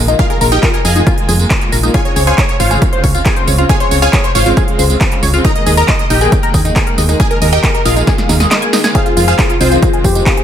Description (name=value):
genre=uplifting trance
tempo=137 BPM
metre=4/4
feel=straight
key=unclear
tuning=A4 = 440 Hz
part: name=wide unison pluck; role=melody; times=0.0-10.4 s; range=C4 to Bb5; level=-18 LUFS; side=equal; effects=phaser, sidechain pumping, dub echo
part: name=supersaw stab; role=second line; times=0.0-10.4 s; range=F4 to Bb5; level=-22 LUFS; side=equal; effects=sidechain pumping, dub echo
part: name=solid FM bass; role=bass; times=0.0-10.2 s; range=Ab1 to F2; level=-14 LUFS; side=equal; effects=sidechain pumping
part: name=dark studio string section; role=sustained chords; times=0.1-10.4 s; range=Db3 to Ab4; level=-20 LUFS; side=equal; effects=sidechain pumping
part: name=tight sequenced synth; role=arpeggios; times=0.1-10.4 s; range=Eb4 to Ab5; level=-18 LUFS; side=left 2 dB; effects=chorus, phaser, sidechain pumping, dub echo
part: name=big-room dance drum kit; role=drums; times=0.1-10.4 s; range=handclaps, hi-hat, snare drum, tambourine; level=-18 LUFS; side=right 2 dB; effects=overdrive
part: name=electronic kick drum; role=drums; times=0.2-10.4 s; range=none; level=-14 LUFS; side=equal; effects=overdrive
part: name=warm concert grand piano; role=second line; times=8.9-10.4 s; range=F4 to Ab4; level=-17 LUFS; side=left 5 dB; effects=digital delay
room=light reverb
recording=none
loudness=-9 LUFS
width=side -9 dB against mid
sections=0.0-10.4 A section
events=drum fill 8.1-8.9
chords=0.0 Bb7sus4; 1.9 Dbmaj7; 5.4 Ebsus4; 8.9 Fm7